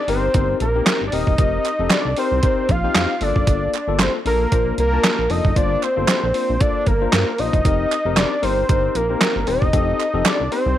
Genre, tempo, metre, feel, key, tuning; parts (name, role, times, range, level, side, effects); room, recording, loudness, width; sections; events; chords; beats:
early-eighties boogie funk; 115 BPM; 4/4; swing 56% on 16ths; A4 = 439 Hz
fat analog lead; melody; 0.0-10.8 s; Bb4 to F5; -21 LUFS; right 1 dB
bright tine electric piano; accompaniment; 0.1-10.7 s; A3 to A5; -25 LUFS; left 13 dB
chorused synth bass; bass; 0.1-10.8 s; Eb1 to G2; -23 LUFS; right 1 dB
detuned 8-bit digital drum machine; drums; 0.1-10.7 s; handclaps, hi-hat, kick drum, snare drum; -20 LUFS; right 1 dB
group handclap; percussion; 0.9-10.4 s; -27 LUFS; right 14 dB
digital ambience; 1960s-style stereo with parts hard left and right; -16 LUFS; side -12 dB against mid
0.0-10.8 A section
0.0 F7sus4; 3.2 Gm9; 7.6 F7sus4
0.34 0.86 | 1.39 1.91 2.43 2.95 | 3.47 4.00 4.52 5.04 | 5.56 6.08 6.61 7.13 | 7.65 8.17 8.69 9.21 | 9.73 10.26 10.78